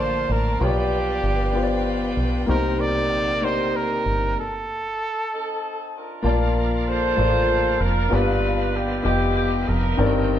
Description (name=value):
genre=gospel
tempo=64 BPM (dotted quarters)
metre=6/8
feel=straight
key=Bb major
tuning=A4 = 440 Hz
part: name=clear trumpet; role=melody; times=0.0-5.9 s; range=G4 to D5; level=-25 LUFS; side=right 2 dB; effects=none
part: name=warm upright piano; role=accompaniment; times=0.0-10.4 s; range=G2 to A5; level=-24 LUFS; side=left 3 dB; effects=none
part: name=bright tonewheel organ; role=sustained chords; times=0.0-10.4 s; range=Eb3 to G4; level=-33 LUFS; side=right 2 dB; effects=slow rotary speaker, overdrive
part: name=warm studio string section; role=sustained chords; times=0.0-4.4 s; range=Bb3 to A5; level=-33 LUFS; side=left 1 dB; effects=none
part: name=deep dub fingered electric bass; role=bass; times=0.0-10.4 s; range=F1 to C2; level=-24 LUFS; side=right 1 dB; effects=none
part: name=mellow horn section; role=melody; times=5.3-10.4 s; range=C4 to C5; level=-24 LUFS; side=equal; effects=none
room=wet large studio reverb, RT60 1.3 s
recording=band playing live in one room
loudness=-20 LUFS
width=side -10 dB against mid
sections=0.0-6.3 A section; 6.3-10.4 B section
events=stop 4.4-6.3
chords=0.0 Bbmaj7; 0.6 G7; 2.5 Cm7; 4.4 F7 (rootless); 6.3 Bbmaj7; 8.1 G7b13